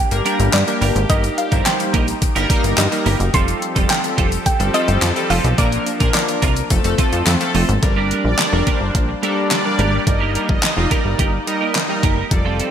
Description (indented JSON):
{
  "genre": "dance-pop",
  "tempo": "107 BPM",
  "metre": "4/4",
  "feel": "straight",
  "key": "unclear",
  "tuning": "A4 = 441 Hz",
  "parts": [
    { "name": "soft round pluck", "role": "melody", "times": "0.0-7.5 s", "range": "D5 to C6", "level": "-24 LUFS", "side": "right 1 dB", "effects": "chorus, digital delay" },
    { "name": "sweeping resonant pad", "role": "sustained chords", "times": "0.0-12.7 s", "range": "F3 to A4", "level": "-26 LUFS", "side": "left 1 dB", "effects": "chorus, sidechain pumping" },
    { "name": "chorused polysynth", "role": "accompaniment", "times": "0.1-12.7 s", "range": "F3 to C5", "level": "-22 LUFS", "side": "equal", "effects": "sidechain pumping" },
    { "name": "twelve-string electric guitar", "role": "riff", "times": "0.1-12.7 s", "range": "G3 to Bb4", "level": "-25 LUFS", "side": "right 7 dB", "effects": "ensemble chorus" },
    { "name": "plucky analog bass", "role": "bass", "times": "0.1-12.6 s", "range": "F1 to G2", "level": "-19 LUFS", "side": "equal", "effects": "sidechain pumping" },
    { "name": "pop drum kit", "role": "drums", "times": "0.1-12.7 s", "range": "handclaps, hi-hat, kick drum, snare drum", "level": "-19 LUFS", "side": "equal", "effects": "overdrive, gated reverb" },
    { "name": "tube shaker", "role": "percussion", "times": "0.1-7.8 s", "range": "none", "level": "-32 LUFS", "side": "left 12 dB", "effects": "none" },
    { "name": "supersaw pad", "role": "melody", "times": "7.8-12.4 s", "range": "D5", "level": "-25 LUFS", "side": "right 1 dB", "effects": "sidechain pumping, digital delay" }
  ],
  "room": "moderate lush hall reverb, RT60 2.2 s",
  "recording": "bright 1980s-style digital production",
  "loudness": "-15 LUFS",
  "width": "side -9 dB against mid",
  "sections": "0.0-7.8 A section; 7.8-12.7 B section",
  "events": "none",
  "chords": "0.0 Gm; 1.1 Eb/G; 3.3 Fadd9; 5.6 Bb; 6.7 F; 7.8 Gm; 10.1 Eb",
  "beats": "0.54 | 1.10 1.66 2.22 2.78 | 3.34 3.90 4.46 5.02 | 5.58 6.14 6.70 7.26 | 7.83 8.39 8.95 9.51 | 10.07 10.63 11.19 11.75 | 12.31"
}